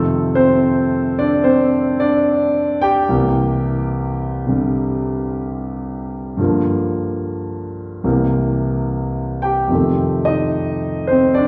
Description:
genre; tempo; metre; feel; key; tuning
solo jazz; 73 BPM; 4/4; swing 67% on 8ths; unclear; A4 = 440 Hz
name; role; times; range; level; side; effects
warm concert grand piano; solo; 0.0-11.5 s; C2 to G5; -18 LUFS; equal; none
room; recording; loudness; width
wet recital hall reverb, RT60 1.6 s; recorded in a church or concert hall; -18 LUFS; mono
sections
0.0-11.5 A section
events
none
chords
0.0 F7; 3.1 C7; 6.4 Gm7; 8.0 C7; 9.7 F7

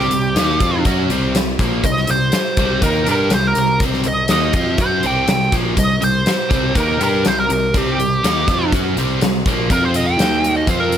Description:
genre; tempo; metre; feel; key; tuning
blues rock power trio and southern rock; 122 BPM; 4/4; straight; unclear; A4 = 440 Hz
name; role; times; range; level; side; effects
fuzz lead guitar; melody; 0.0-11.0 s; G4 to G5; -19 LUFS; right 2 dB; wah, distortion
biting overdriven guitar; riff; 0.0-11.0 s; Bb2 to G4; -20 LUFS; equal; none
modern bright picked electric bass; bass; 0.0-11.0 s; Bb1 to G2; -22 LUFS; equal; none
big rock drum kit; drums; 0.0-11.0 s; hi-hat, kick drum, snare drum; -19 LUFS; left 1 dB; none
room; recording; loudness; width
light reverb; none; -14 LUFS; side -9 dB against mid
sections
0.0-11.0 A section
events
none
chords
0.0 C5; 9.7 F5; 10.2 Eb5

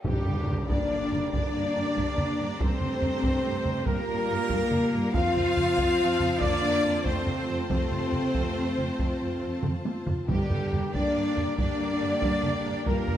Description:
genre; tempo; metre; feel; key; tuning
cinematic, epic orchestral film score; 94 BPM (dotted quarters); 12/8; straight; G minor; A4 = 440 Hz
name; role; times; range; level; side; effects
rich symphonic violin section; melody; 0.0-13.2 s; G4 to F5; -37 LUFS; left 3 dB; none
large flute ensemble; second line; 0.0-13.2 s; G4 to F5; -37 LUFS; left 1 dB; none
rich chamber violin section; second line; 0.0-13.2 s; G4 to F5; -40 LUFS; left 2 dB; none
rich symphonic viola section; accompaniment; 0.0-13.2 s; D3 to C4; -36 LUFS; right 1 dB; none
mellow French horn section; sustained chords; 0.0-13.2 s; G3 to F4; -31 LUFS; left 4 dB; none
rich symphonic string section; sustained chords; 0.0-13.2 s; C4 to Bb5; -38 LUFS; left 1 dB; none
bright trumpet section; stabs; 0.0-13.2 s; G4 to F5; -35 LUFS; right 2 dB; none
rich symphonic cello section; bass; 0.0-13.2 s; G3 to F4; -34 LUFS; equal; none
rich symphonic double bass section; bass; 0.0-13.2 s; F2 to G2; -34 LUFS; right 3 dB; none
taiko ensemble; drums; 0.0-13.2 s; none; -30 LUFS; right 1 dB; none
tam-tam; percussion; 0.0-1.7 s; none; -40 LUFS; left 2 dB; none
timpani; percussion; 0.0-0.7, 10.3-10.9 s; G2; -34 LUFS; equal; none
sub drop; sound effects; 0.1-2.6 s; none; -37 LUFS; right 1 dB; none
mellow trombone section; sustained chords; 0.1-13.2 s; G2 to F3; -37 LUFS; right 3 dB; none
room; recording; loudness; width
wet recital hall reverb, RT60 1.4 s; none; -24 LUFS; side -11 dB against mid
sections
0.0-13.2 A section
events
band accent 0.0-0.5; impact 0.0-2.6; drum fill 9.6-10.3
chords
0.0 Gm; 5.1 F; 10.3 Gm

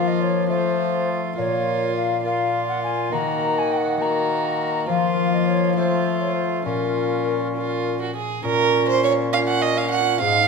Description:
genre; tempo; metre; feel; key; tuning
classical, renaissance-style consort dance; 68 BPM (dotted quarters); 6/8; straight; Bb minor; A4 = 440 Hz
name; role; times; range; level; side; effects
mellow hollow tenor recorder; melody; 0.0-10.5 s; F4 to Bb5; -25 LUFS; left 3 dB; none
dark violin; second line; 0.0-10.5 s; F4 to Gb5; -24 LUFS; right 6 dB; none
concert harp; accompaniment; 0.0-10.5 s; Ab2 to Bb4; -26 LUFS; left 10 dB; none
warm bassoon; accompaniment; 0.0-10.5 s; Ab3 to Db4; -29 LUFS; left 1 dB; none
mellow bassoon; bass; 0.0-10.5 s; Ab2 to F3; -26 LUFS; right 1 dB; none
room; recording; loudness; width
moderate recital hall reverb, RT60 1.4 s; none; -19 LUFS; side -4 dB against mid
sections
0.0-8.4 A section; 8.4-10.5 A section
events
none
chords
0.5 F; 1.4 Bbm; 3.1 Ebm; 4.9 Fsus4; 5.8 F; 6.7 Bbm

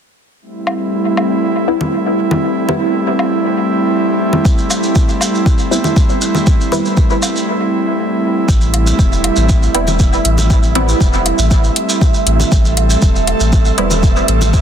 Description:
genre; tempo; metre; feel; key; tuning
dub techno; 119 BPM; 4/4; straight; A minor; A4 = 440 Hz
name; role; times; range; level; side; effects
airy breathy pad; sustained chords; 0.5-14.6 s; G3 to A4; -16 LUFS; right 1 dB; chorus, sidechain pumping
woodblock and congas; percussion; 0.7-14.5 s; none; -22 LUFS; left 2 dB; overdrive, sidechain pumping on perc, dub echo
filtered dub chord stab; stabs; 1.7-13.9 s; G3 to E4; -20 LUFS; equal; chorus, phaser, sidechain pumping, dub echo
electronic kick drum; drums; 4.5-14.6 s; none; -12 LUFS; equal; none
maracas; percussion; 4.5-14.6 s; none; -22 LUFS; right 2 dB; none
warm sub bass; bass; 8.5-14.6 s; E1 to A1; -15 LUFS; equal; sidechain pumping
wind-like tuned noise texture; texture; 9.1-14.6 s; E5; -22 LUFS; right 7 dB; built-in reverb, sidechain pumping
electronic hi-hat; drums; 8.7-14.4 s; none; -17 LUFS; equal; none
room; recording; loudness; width
light reverb; dense, heavily limited modern master; -11 LUFS; side -8 dB against mid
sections
0.4-8.5 A section; 8.5-14.6 B section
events
filter sweep on synth stab 0.4-8.5; break 7.5-8.5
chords
0.4 Am7

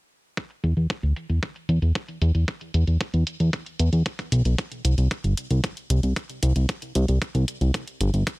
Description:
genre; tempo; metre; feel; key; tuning
italo disco; 114 BPM; 4/4; straight; unclear; A4 = 440 Hz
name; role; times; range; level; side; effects
electronic hi-hat; drums; 0.4-8.4 s; none; -35 LUFS; equal; low-pass filter on hats, low-pass filter on room
electronic kick drum; drums; 0.4-8.4 s; none; -28 LUFS; equal; overdrive, high-pass filter on kick, high-pass filter on room
fat analog bass; bass; 0.6-8.2 s; G1 to E2; -20 LUFS; equal; tube saturation
room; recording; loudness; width
little or no reverb; bright 1980s-style digital production; -22 LUFS; side -24 dB against mid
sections
0.4-8.4 A section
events
filter sweep on analog synth bass 0.4-8.4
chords
none

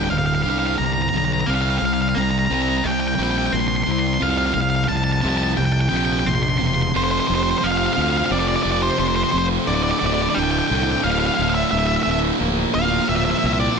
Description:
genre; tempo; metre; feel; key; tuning
post-rock; 88 BPM; 4/4; straight; unclear; A4 = 441 Hz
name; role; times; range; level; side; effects
octave-fuzz lead guitar; melody; 0.0-13.8 s; C5 to C6; -22 LUFS; equal; distortion, slapback echo, digital delay
thick fuzz guitar; riff; 0.0-13.8 s; D2 to C4; -21 LUFS; right 1 dB; distortion
fuzz fingered electric bass; bass; 0.0-13.7 s; D1 to D2; -24 LUFS; equal; overdrive
room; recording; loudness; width
moderate scoring stage reverb, RT60 2.1 s; big arena sound; -17 LUFS; side -5 dB against mid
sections
0.0-6.9 A section; 6.9-13.8 B section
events
build-up 0.0-6.9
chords
0.0 Gm7/D; 1.5 C7sus4; 4.2 Fadd9/C; 6.9 F5; 9.7 D5; 12.4 Bb/D

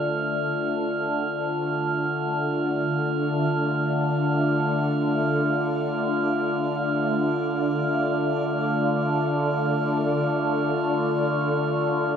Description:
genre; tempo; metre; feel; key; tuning
ambient; free time; none; none; D minor; A4 = 440 Hz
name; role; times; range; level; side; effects
granular cloud pad; sustained chords; 0.0-12.2 s; D4 to F5; -28 LUFS; equal; built-in reverb
overtone-sweeping drone; drone; 0.0-12.2 s; D3 to A3; -26 LUFS; equal; chorus, built-in reverb, phaser
glass harmonica; texture; 0.0-12.2 s; F4 to F6; -27 LUFS; equal; none
room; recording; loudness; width
wet huge ambient reverb, RT60 8.8 s; in a vast, echoing space; -22 LUFS; side -7 dB against mid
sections
0.0-12.2 A section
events
fade-in on ambient pad 0.0-12.2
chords
0.0 Dm7; 11.6 Bbmaj7 (rootless)

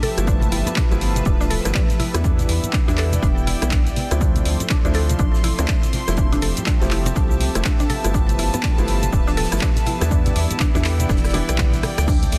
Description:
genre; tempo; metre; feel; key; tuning
deep house; 122 BPM; 4/4; swing 60% on 16ths; unclear; A4 = 440 Hz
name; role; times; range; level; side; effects
warm analog pad; sustained chords; 0.0-12.4 s; F3 to E5; -34 LUFS; equal; chorus, sidechain pumping
mallet-like synth pluck; arpeggios; 0.0-12.1 s; D3 to D5; -32 LUFS; equal; chorus, phaser, sidechain pumping, digital delay
damped 70s drum kit; drums; 0.0-12.4 s; hi-hat, snare drum; -41 LUFS; equal; none
punchy analog drum machine; drums; 0.0-12.4 s; crash cymbal, handclaps, hi-hat, rim click, shaker; -30 LUFS; equal; soft clipping on snare
congas; percussion; 0.0-12.3 s; none; -32 LUFS; equal; none
rich studio string section; texture; 0.0-12.4 s; F3 to C6; -32 LUFS; equal; sidechain pumping
felt-muted upright piano; stabs; 0.2-12.1 s; E3 to E4; -31 LUFS; equal; sidechain pumping, digital delay
rubbery square bass; bass; 0.2-12.4 s; D1 to E2; -24 LUFS; equal; tube saturation, sidechain pumping
electronic kick drum; drums; 0.3-12.2 s; none; -22 LUFS; equal; none
room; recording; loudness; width
small room ambience; dense, heavily limited modern master; -19 LUFS; mono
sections
0.0-12.4 A section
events
drum fill 11.1-12.1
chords
0.0 G13; 2.2 Em7; 4.2 Fmaj9; 7.9 G13; 10.1 Em7

